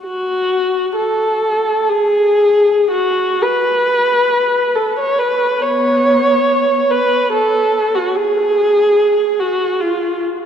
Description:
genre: classical, free, expressive piece for unaccompanied viola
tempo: 52-75 BPM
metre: 3/4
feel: rubato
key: unclear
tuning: A4 = 439 Hz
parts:
  - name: dark viola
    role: solo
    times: 0.0-10.2 s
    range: B3 to C#5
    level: -13 LUFS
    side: equal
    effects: none
room: wet cathedral reverb, RT60 4.8 s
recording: dark, warm production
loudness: -12 LUFS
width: side -8 dB against mid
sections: 0.0-10.5 A section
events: none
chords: none

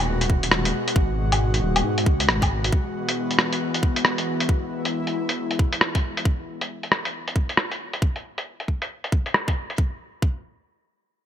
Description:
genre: future garage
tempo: 136 BPM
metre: 4/4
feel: swing 62% on 16ths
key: unclear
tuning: A4 = 440 Hz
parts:
  - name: airy breathy pad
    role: sustained chords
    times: 0.0-6.2 s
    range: B2 to F#4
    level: -27 LUFS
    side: left 1 dB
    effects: chorus, sidechain pumping
  - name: swelling detuned saw bass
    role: bass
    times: 0.0-2.7 s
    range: D#1 to G#2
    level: -24 LUFS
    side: equal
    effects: sidechain pumping
  - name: lo-fi sampler-style drum kit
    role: drums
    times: 0.2-9.8 s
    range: hi-hat, rim click, woodblock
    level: -23 LUFS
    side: equal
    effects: low-pass filter on hats, low-pass filter on perc, low-pass filter on snare, low-pass filter on room
  - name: electronic kick drum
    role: drums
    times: 0.3-10.4 s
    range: none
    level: -21 LUFS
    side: equal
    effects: none
room: light reverb, digital ambience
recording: bright 1980s-style digital production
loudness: -21 LUFS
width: side -10 dB against mid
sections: 0.0-9.8 A section; 9.8-11.3 B section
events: none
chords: 0.0 G#m7; 2.7 F#9sus4; 6.3 N.C.

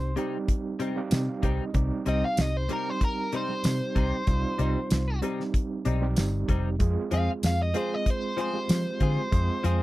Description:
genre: straight-eighth soul blues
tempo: 95 BPM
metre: 4/4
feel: straight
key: C minor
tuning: A4 = 439 Hz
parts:
  - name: biting overdriven guitar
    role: melody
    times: 0.0-9.8 s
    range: Bb4 to F5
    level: -31 LUFS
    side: equal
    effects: none
  - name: overdriven tine electric piano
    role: accompaniment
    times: 0.0-9.8 s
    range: G3 to G5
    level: -32 LUFS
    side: right 4 dB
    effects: medium tremolo
  - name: vintage muted fingered electric bass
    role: bass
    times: 0.0-9.8 s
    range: F1 to F3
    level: -27 LUFS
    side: equal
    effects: none
  - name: direct-recorded clean electric guitar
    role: stabs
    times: 0.2-9.8 s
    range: C3 to Ab4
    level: -31 LUFS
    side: left 4 dB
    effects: analog chorus
  - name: damped 70s drum kit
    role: drums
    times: 0.2-9.8 s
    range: hi-hat, kick drum, snare drum, tambourine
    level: -26 LUFS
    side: equal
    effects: none
room: little or no reverb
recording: dry, close 1970s-style studio recording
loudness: -24 LUFS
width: side -17 dB against mid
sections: 0.0-9.8 A section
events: overdriven electric guitar solo 0.0-9.8; tine electric piano fill 0.5-1.8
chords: 0.0 Cm; 6.8 Fm

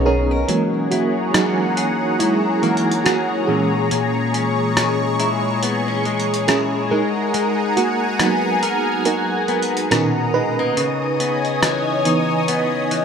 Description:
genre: contemporary R&B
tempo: 70 BPM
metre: 4/4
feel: swing 58% on 16ths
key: unclear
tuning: A4 = 440 Hz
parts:
  - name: FM electric piano with tremolo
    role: accompaniment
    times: 0.0-13.0 s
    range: A#2 to A#5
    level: -21 LUFS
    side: right 4 dB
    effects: none
  - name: lush unison pad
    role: sustained chords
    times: 0.0-13.0 s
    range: B2 to D#6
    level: -21 LUFS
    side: left 1 dB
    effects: chorus, phaser
  - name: direct-recorded clean electric guitar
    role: arpeggios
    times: 0.0-13.0 s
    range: A#2 to C#5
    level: -24 LUFS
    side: left 6 dB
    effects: wide subtle chorus, tape echo
  - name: dusty soul sampler-style drum kit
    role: drums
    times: 0.5-13.0 s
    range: hi-hat, rim click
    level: -23 LUFS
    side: equal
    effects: none
room: wet plate reverb, RT60 2.4 s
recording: dreamy mix soaked in reverb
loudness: -16 LUFS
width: side -6 dB against mid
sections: 0.5-13.0 A section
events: FM electric piano fill 0.0-0.5; kick muted 0.5-13.0; FM electric piano solo 0.5-13.0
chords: 0.5 F#9; 3.5 A#m7b5; 6.9 G#m9; 9.9 Bmaj7; 10.8 C#m9

